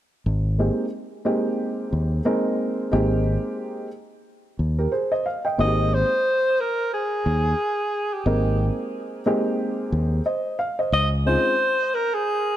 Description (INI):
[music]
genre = hip hop, jazz-hop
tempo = 90 BPM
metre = 4/4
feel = swing 59% on 16ths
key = Ab major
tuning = A4 = 440 Hz
[part]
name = fingered electric bass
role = bass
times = 0.3-11.4 s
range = Ab1 to Eb2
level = -22 LUFS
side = equal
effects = none
[part]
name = dark baby grand piano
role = accompaniment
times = 0.6-11.5 s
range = Ab3 to G5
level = -24 LUFS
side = right 1 dB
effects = none
[part]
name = breathy alto saxophone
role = melody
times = 5.6-12.6 s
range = G4 to Eb5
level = -22 LUFS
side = equal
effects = tape echo
[sound]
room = light reverb, small room reverb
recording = none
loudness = -20 LUFS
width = side -12 dB against mid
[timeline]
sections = 0.3-5.6 A section; 5.6-12.6 B section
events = none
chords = 0.3 Abmaj9; 10.9 Dbmaj9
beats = | 0.26 0.92 1.59 2.26 | 2.92 3.59 4.26 4.92 | 5.59 6.26 6.92 7.59 | 8.26 8.92 9.59 10.26 | 10.92 11.59 12.26